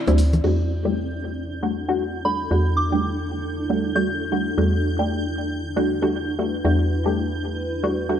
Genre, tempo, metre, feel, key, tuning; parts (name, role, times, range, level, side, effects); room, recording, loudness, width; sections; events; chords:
deep house; 116 BPM; 4/4; swing 59% on 16ths; E minor; A4 = 444 Hz
granular cloud pad; texture; 0.0-8.2 s; C4 to D5; -29 LUFS; equal; built-in reverb
filtered dub chord stab; stabs; 0.1-8.2 s; G3 to G4; -24 LUFS; equal; phaser, tape echo
hollow knocking FM bass; bass; 0.1-8.2 s; D2 to E2; -24 LUFS; equal
punchy analog drum machine; drums; 0.1-0.6 s; crash cymbal, hi-hat; -39 LUFS; equal; overdrive, low-pass filter on hats, low-pass filter on snare, low-pass filter on cymbals
analog string pad; texture; 0.4-8.2 s; G6; -36 LUFS; right 2 dB; ensemble chorus, phaser
soft synth bell; melody; 2.2-4.5 s; B5 to G6; -27 LUFS; right 1 dB; chorus, tape echo
moderate plate reverb, RT60 2.2 s; dark, warm production; -20 LUFS; side -9 dB against mid
0.4-8.2 A section
0.4 Em11